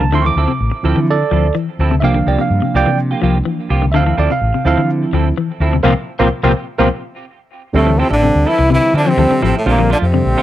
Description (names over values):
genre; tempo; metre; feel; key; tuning
afrobeat; 126 BPM; 4/4; straight; D minor; A4 = 440 Hz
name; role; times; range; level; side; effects
tine electric piano; accompaniment; 0.0-10.4 s; D3 to D6; -18 LUFS; right 4 dB; none
semi-hollow electric guitar; arpeggios; 0.0-10.3 s; Bb2 to F3; -19 LUFS; left 7 dB; none
semi-hollow electric guitar; stabs; 0.0-10.4 s; F3 to A4; -22 LUFS; right 5 dB; analog chorus, tape echo
fretless electric bass; bass; 0.0-10.3 s; A1 to D3; -16 LUFS; left 1 dB; none
bright trombone; melody; 7.8-10.4 s; A3 to E4; -15 LUFS; left 1 dB; none
edgy tenor saxophone; second line; 7.8-10.4 s; A2 to E3; -22 LUFS; right 2 dB; none
room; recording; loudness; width
light reverb; none; -12 LUFS; side -13 dB against mid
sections
0.0-7.8 A section; 7.8-10.4 B section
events
tine electric piano solo 0.0-7.8; band accent 5.8-7.8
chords
0.1 Dm9; 2.0 C7sus4; 3.9 Dm9; 5.8 C7sus4; 7.8 Dm9; 9.7 Bbmaj7